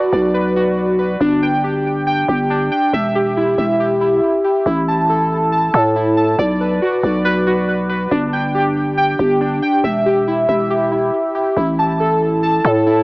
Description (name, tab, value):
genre	hip hop, trap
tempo	139 BPM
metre	4/4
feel	half-time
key	unclear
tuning	A4 = 440 Hz
part	warbly lo-fi synth keys	arpeggios	0.0-13.0 s	D4 to A5	-15 LUFS	equal	chorus, phaser, tape echo
part	growling 808-style bass	bass	0.1-13.0 s	E1 to A2	-19 LUFS	equal	none
room	moderate spring reverb, RT60 1.4 s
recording	echo-heavy mix, small speaker sound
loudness	-14 LUFS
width	side -24 dB against mid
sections	0.0-13.0 A section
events	none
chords	0.0 Bm; 1.2 G5; 2.9 Em; 4.7 A5; 6.4 Bm; 8.1 G5; 9.8 Em; 11.6 A5